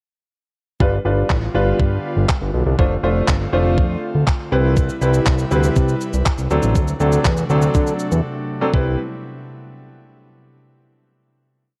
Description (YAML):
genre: dance-pop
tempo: 121 BPM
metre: 4/4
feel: straight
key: C major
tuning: A4 = 440 Hz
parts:
  - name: clear concert grand piano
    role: accompaniment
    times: 0.8-9.0 s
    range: F#3 to C5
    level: -23 LUFS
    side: equal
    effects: sidechain pumping
  - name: airy breathy pad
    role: sustained chords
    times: 0.8-9.0 s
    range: C3 to B4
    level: -29 LUFS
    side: equal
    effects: chorus, sidechain pumping
  - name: fat analog bass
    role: bass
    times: 0.8-9.0 s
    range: F1 to D3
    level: -21 LUFS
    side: equal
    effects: sidechain pumping
  - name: clean 12-bit digital drum machine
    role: drums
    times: 0.8-8.9 s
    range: handclaps, kick drum, shaker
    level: -21 LUFS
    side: equal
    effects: none
room: little or no reverb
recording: worn, warbling old tape, cassette tape, warbly pitch drift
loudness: -18 LUFS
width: mono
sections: 0.8-8.7 pre-chorus; 8.7-10.7 final chord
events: break 8.2-8.7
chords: 0.8 G7; 2.8 F6; 4.5 Cmaj7; 6.5 D7; 8.7 Cmaj7